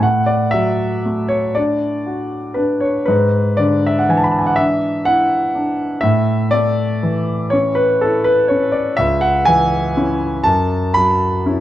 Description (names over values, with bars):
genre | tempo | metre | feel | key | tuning
classical, romantic nocturne for solo piano | 40 BPM (dotted quarters) | 6/8 | rubato | A major | A4 = 440 Hz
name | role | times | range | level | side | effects
warm grand piano | solo | 0.0-11.6 s | C#2 to B5 | -14 LUFS | equal | none
room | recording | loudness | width
light reverb | worn, warbling old tape, cassette tape, warbly pitch drift | -14 LUFS | side -13 dB against mid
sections
0.0-11.6 A section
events
none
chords
0.0 D/A; 3.1 E7/G#; 6.0 A; 9.0 C#m; 10.5 F#5